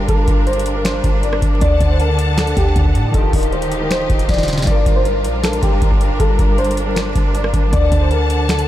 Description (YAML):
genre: hip hop, trap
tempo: 157 BPM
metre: 4/4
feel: half-time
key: G minor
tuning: A4 = 441 Hz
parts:
  - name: dark concert grand piano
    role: melody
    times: 0.0-8.6 s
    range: G4 to D5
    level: -21 LUFS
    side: left 1 dB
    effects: analog chorus
  - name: concert harp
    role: accompaniment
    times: 0.0-8.7 s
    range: D3 to Bb4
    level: -26 LUFS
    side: right 2 dB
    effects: none
  - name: warm symphonic string section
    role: sustained chords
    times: 0.0-8.7 s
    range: D3 to A5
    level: -22 LUFS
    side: equal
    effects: none
  - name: clean 808-style bass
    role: bass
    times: 0.0-8.7 s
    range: D1 to A2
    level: -18 LUFS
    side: equal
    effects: none
  - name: booming analog drum machine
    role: drums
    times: 0.1-8.7 s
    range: finger snaps, hi-hat, kick drum, rim click, snare drum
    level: -17 LUFS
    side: equal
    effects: none
room: light reverb, small room ambience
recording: vinyl crackle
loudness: -13 LUFS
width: side -13 dB against mid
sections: 0.0-8.7 A section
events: drum fill 4.3-4.7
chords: 0.0 Gm7; 1.6 D; 3.1 Ebadd9; 4.7 Gm7; 7.7 D